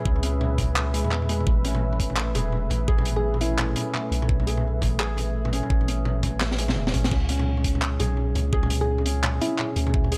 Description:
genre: half-time drum and bass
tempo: 170 BPM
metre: 4/4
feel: swing 60% on 16ths, half-time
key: unclear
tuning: A4 = 440 Hz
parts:
  - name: dark analog pad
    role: sustained chords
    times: 0.0-10.2 s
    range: A3 to E5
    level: -36 LUFS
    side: equal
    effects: chorus, vintage 12-bit sampler grit, sidechain pumping
  - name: felt-muted upright piano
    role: arpeggios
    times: 0.0-10.2 s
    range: G#3 to G#4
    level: -36 LUFS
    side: equal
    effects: tape echo
  - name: long sustained 808-style bass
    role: bass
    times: 0.1-10.2 s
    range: E1 to E2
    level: -28 LUFS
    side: equal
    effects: tube saturation
  - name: electronic kick drum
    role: drums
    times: 0.1-10.0 s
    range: none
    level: -26 LUFS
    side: equal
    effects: none
  - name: crunchy breakbeat drum kit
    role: drums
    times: 0.2-10.2 s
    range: crash cymbal, handclaps, hi-hat, snare drum, toms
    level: -30 LUFS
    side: equal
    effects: none
  - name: soft struck synth lead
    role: melody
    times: 3.2-3.9, 8.8-9.7 s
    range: E4 to G#4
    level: -32 LUFS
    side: equal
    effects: chorus, tape echo
room: studio ambience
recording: dry, gritty hardware recording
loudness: -24 LUFS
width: mono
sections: 0.0-10.2 A section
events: drum fill 6.4-7.1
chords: 0.0 C#m7; 1.5 Asus2; 7.1 C#m7

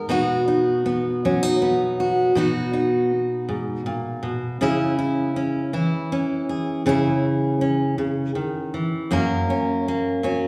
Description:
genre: folk, solo fingerstyle acoustic guitar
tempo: 53 BPM (dotted quarters)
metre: 6/8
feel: straight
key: B major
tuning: A4 = 436 Hz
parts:
  - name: fingerpicked steel-string acoustic guitar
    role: solo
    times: 0.0-10.5 s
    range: F#2 to A#4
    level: -22 LUFS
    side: equal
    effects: none
room: wet scoring stage reverb, RT60 1.7 s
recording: recorded in a church or concert hall, small room reverb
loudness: -22 LUFS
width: mono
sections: 0.0-10.5 A section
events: none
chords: 0.1 B; 4.6 C#m; 9.1 F#

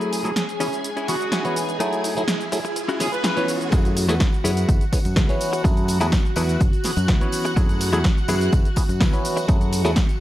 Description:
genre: filtered disco house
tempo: 125 BPM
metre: 4/4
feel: straight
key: F# minor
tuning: A4 = 440 Hz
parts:
  - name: clav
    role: accompaniment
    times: 0.0-9.9 s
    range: E3 to C#5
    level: -26 LUFS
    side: equal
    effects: phaser, sidechain pumping, low-pass filter
  - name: string machine, full ensemble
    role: sustained chords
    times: 0.0-10.2 s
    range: F#4 to G#5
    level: -28 LUFS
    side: right 1 dB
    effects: ensemble chorus, sidechain pumping, low-pass filter
  - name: direct-recorded clean electric guitar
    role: riff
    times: 0.0-10.1 s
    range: A3 to B4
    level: -28 LUFS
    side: left 3 dB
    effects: vintage 12-bit sampler grit, sidechain pumping, low-pass filter
  - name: overdriven fingered electric bass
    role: bass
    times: 0.0-9.9 s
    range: F#1 to F#2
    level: -24 LUFS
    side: equal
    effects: sidechain pumping, high-pass filter, low-pass filter
  - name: punchy analog drum machine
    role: drums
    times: 0.0-10.2 s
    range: hi-hat, shaker, snare drum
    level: -27 LUFS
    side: equal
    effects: overdrive, sidechain pumping on hats, studio ambience, sidechain pumping on perc
  - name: riser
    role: sound effects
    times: 0.0-3.7 s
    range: none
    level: -33 LUFS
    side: right 2 dB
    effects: none
  - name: clear horn section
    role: melody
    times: 1.1-3.5 s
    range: F#4 to B4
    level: -29 LUFS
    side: equal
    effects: sidechain pumping, low-pass filter, analog delay
  - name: electronic kick drum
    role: drums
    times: 3.7-10.1 s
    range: none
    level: -19 LUFS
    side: equal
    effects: overdrive, studio ambience
  - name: tambourine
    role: percussion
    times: 3.7-10.2 s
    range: none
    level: -37 LUFS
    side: left 2 dB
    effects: sidechain pumping on perc, low-pass filter on perc
room: light reverb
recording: dry, gritty hardware recording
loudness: -18 LUFS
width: side -14 dB against mid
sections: 0.0-3.7 A section; 3.7-10.2 B section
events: build-up 0.0-3.7; riser 0.0-3.7; drop 3.7-10.2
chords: 0.0 F#m9; 0.6 E6/F#; 1.8 F#m9; 2.8 C#m7/F#; 3.7 F#m9; 4.4 E6/F#; 5.6 F#m9; 6.6 C#m7/F#; 7.6 F#m9; 8.3 E6/F#; 9.5 F#m9

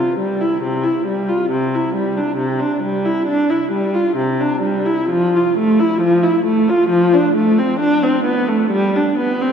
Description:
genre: classical, baroque-style suite movement for unaccompanied viola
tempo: 62-68 BPM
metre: 4/4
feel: rubato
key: C major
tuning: A4 = 441 Hz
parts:
  - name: warm viola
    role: solo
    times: 0.0-9.5 s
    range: C3 to F4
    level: -14 LUFS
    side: equal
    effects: none
room: wet cathedral reverb, RT60 6.6 s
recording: heard from further back in the room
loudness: -14 LUFS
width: side -7 dB against mid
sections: 0.0-9.5 A section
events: none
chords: none

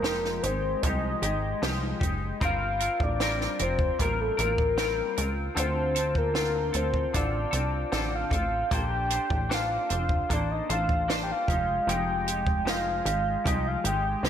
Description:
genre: indie pop, bedroom pop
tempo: 76 BPM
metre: 4/4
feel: straight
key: unclear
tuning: A4 = 440 Hz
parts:
  - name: soft octave-layered synth lead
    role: melody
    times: 0.0-14.3 s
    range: A4 to G5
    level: -29 LUFS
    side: left 1 dB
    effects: lush chorus, slapback echo
  - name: semi-hollow electric guitar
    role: accompaniment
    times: 0.0-14.3 s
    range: D3 to C5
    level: -32 LUFS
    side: left 2 dB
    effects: analog chorus, vibrato effect, slapback echo
  - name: plucky analog bass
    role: bass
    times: 0.0-14.3 s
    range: F1 to D2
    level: -31 LUFS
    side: right 1 dB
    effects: none
  - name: compact cocktail drum kit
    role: drums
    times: 0.0-14.3 s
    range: hi-hat, kick drum, snare drum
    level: -30 LUFS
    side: right 1 dB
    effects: none
room: moderate lush hall reverb, RT60 2.4 s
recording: big arena sound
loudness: -25 LUFS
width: side -9 dB against mid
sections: 0.0-14.3 A section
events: none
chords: 0.0 Fm9; 2.4 Gm11; 5.6 Dm7; 8.7 Bbmaj9; 11.5 Fm9

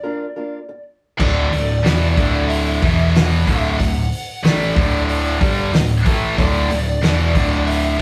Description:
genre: quiet-loud alternative rock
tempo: 93 BPM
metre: 4/4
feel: straight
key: unclear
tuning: A4 = 438 Hz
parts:
  - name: lead guitar through a small cranked amp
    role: melody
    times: 0.0-8.0 s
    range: D5 to F#5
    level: -28 LUFS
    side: equal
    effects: overdrive
  - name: fingerpicked swing-style acoustic guitar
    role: arpeggios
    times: 0.0-0.7 s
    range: Bb3 to Bb4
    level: -29 LUFS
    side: equal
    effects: none
  - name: heavy high-gain guitar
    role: riff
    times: 1.2-8.0 s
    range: D2 to A3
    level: -25 LUFS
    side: equal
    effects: distortion
  - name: thick fuzz guitar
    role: riff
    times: 1.2-8.0 s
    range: D2 to A3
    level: -26 LUFS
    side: equal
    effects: distortion
  - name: thick fuzz guitar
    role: riff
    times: 1.2-8.0 s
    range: D2 to A3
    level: -27 LUFS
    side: equal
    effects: distortion
  - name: overdriven picked electric bass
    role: bass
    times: 1.2-8.0 s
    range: D1 to A1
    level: -23 LUFS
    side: equal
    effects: none
  - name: loose indie drum kit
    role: drums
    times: 1.2-8.0 s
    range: crash cymbal, hi-hat, kick drum, snare drum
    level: -22 LUFS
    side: equal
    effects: none
room: moderate studio reverb, RT60 0.6 s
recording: rough rehearsal-room recording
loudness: -17 LUFS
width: mono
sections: 0.0-1.2 A section; 1.2-8.0 B section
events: break 0.0-1.2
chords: 0.0 Bb; 1.2 D5; 2.8 E5; 3.5 D5

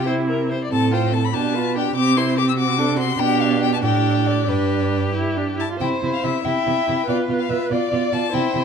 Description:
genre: quick classical-period movement for string quartet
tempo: 89-99 BPM (dotted quarters)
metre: 6/8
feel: rubato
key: C major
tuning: A4 = 439 Hz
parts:
  - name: rich violin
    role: melody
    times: 0.0-8.6 s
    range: B4 to E6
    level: -24 LUFS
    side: left 11 dB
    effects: none
  - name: rich violin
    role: second line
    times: 0.0-8.6 s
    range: E4 to D5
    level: -26 LUFS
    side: left 5 dB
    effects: none
  - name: rich viola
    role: accompaniment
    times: 0.0-8.6 s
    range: C4 to E5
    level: -23 LUFS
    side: right 2 dB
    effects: none
  - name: rich cello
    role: bass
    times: 0.0-8.6 s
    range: G2 to C3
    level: -22 LUFS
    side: right 5 dB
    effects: none
room: moderate recital hall reverb, RT60 1.6 s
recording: dark, warm production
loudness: -18 LUFS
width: side -6 dB against mid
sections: 0.0-5.8 A section; 5.8-8.6 B section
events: none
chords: 0.1 C; 0.7 F/A; 1.3 G7/B; 2.0 C; 2.6 D7/C; 3.2 G/B; 4.5 G; 5.8 C; 7.1 Bdim

